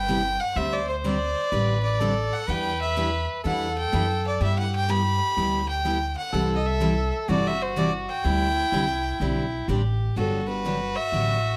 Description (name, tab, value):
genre	acoustic string swing (jazz manouche)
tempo	125 BPM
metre	4/4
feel	swing 65% on 8ths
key	G major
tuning	A4 = 437 Hz
part	rich violin	melody	0.0-11.6 s	A4 to B5	-29 LUFS	equal	none
part	edgy soprano saxophone	second line	0.0-11.6 s	E4 to C5	-33 LUFS	equal	none
part	upright bass	bass	0.0-11.5 s	G1 to G2	-30 LUFS	equal	none
part	picked steel-string acoustic guitar	accompaniment	0.1-11.4 s	C3 to A4	-31 LUFS	equal	none
part	picked steel-string acoustic guitar	accompaniment	0.1-11.4 s	C3 to B4	-37 LUFS	equal	none
room	moderate studio reverb, RT60 0.5 s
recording	none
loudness	-25 LUFS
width	mono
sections	0.0-10.2 A section; 10.2-11.6 B section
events	none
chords	0.0 Cmaj7; 0.6 D7sus4; 2.5 Em7; 4.4 G6; 6.3 C6; 8.2 D9sus4; 10.2 Gmaj7